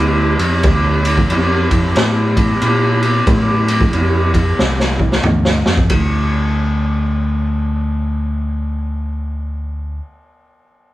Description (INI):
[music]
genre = stoner and doom metal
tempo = 91 BPM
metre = 4/4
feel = swing 63% on 8ths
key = D minor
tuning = A4 = 440 Hz
[part]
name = picked electric bass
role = bass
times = 0.0-10.0 s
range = C2 to Bb2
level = -17 LUFS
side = equal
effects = overdrive
[part]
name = raw garage drum kit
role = drums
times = 0.4-6.1 s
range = kick drum, ride cymbal, snare drum, toms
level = -15 LUFS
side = equal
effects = none
[sound]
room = light reverb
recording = band playing live in one room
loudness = -13 LUFS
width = side -16 dB against mid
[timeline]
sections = 0.0-5.9 A section; 5.9-8.5 B section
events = drum fill 4.6-5.9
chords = none